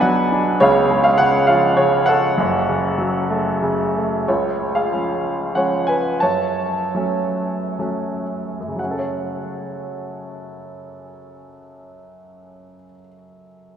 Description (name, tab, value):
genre	classical, lyrical solo piano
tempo	54-104 BPM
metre	3/4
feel	rubato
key	F# minor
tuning	A4 = 440 Hz
part	clear upright piano	solo	0.0-13.8 s	F#1 to B5	-17 LUFS	right 1 dB	none
room	wet cathedral reverb, RT60 4.9 s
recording	recorded in a church or concert hall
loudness	-16 LUFS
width	side -8 dB against mid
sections	0.0-4.3 A section; 4.3-8.8 B section; 8.8-13.8 C section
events	slowing down 4.3-8.8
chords	0.0 Bm; 0.6 C#; 2.4 F#m; 4.3 C#; 6.2 F#m